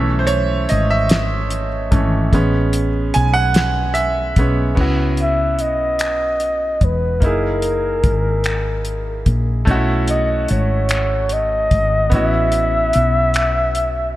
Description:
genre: slow six-eight R&B.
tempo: 49 BPM (dotted quarters).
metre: 6/8.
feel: straight.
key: unclear.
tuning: A4 = 440 Hz.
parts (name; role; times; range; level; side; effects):
bright baby grand piano; accompaniment; 0.0-14.2 s; E3 to G#5; -21 LUFS; right 2 dB; none.
woody fretless electric bass; bass; 0.0-14.2 s; E1 to C#2; -19 LUFS; equal; lush chorus.
cloth-damped thuddy drum kit; drums; 0.3-13.9 s; crash cymbal, finger snaps, hi-hat, kick drum, snare drum; -19 LUFS; equal; none.
breathy flugelhorn; melody; 5.2-14.1 s; A#4 to E5; -19 LUFS; left 1 dB; none.
room: light reverb.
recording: bright 1980s-style digital production.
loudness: -15 LUFS.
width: side -15 dB against mid.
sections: 0.0-4.8 A section; 4.8-14.2 B section.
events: grand piano solo 0.0-4.8.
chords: 0.0 B7sus4; 2.3 Amaj9; 4.8 C#m11; 7.2 F#13; 9.7 B9sus4; 12.1 A6.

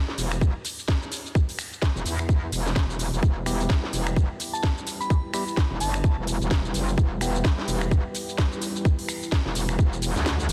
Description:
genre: bass house.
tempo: 128 BPM.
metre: 4/4.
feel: swing 58% on 16ths.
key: E minor.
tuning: A4 = 440 Hz.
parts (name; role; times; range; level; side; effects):
garage drum kit; drums; 0.1-10.5 s; finger snaps, hi-hat, shaker, snare drum; -33 LUFS; equal; none.
metallic wobble bass; bass; 0.2-10.5 s; E1 to E2; -29 LUFS; equal; chorus, tube saturation, sidechain pumping.
electronic kick drum; drums; 0.4-9.9 s; none; -25 LUFS; equal; none.
deep dark ambient pad; sustained chords; 4.4-10.5 s; G3 to G5; -38 LUFS; equal; chorus, built-in reverb, sidechain pumping.
percussive organ stab; stabs; 3.5-9.1 s; G3 to G4; -36 LUFS; equal; chorus, sidechain pumping, dub echo.
glassy synth bell; melody; 4.5-6.3 s; A5 to B5; -35 LUFS; equal; chorus, dub echo.
room: light reverb.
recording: dense, heavily limited modern master.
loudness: -25 LUFS.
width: mono.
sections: 0.0-10.5 A section.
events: kick drops out 10.3.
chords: 0.0 Em.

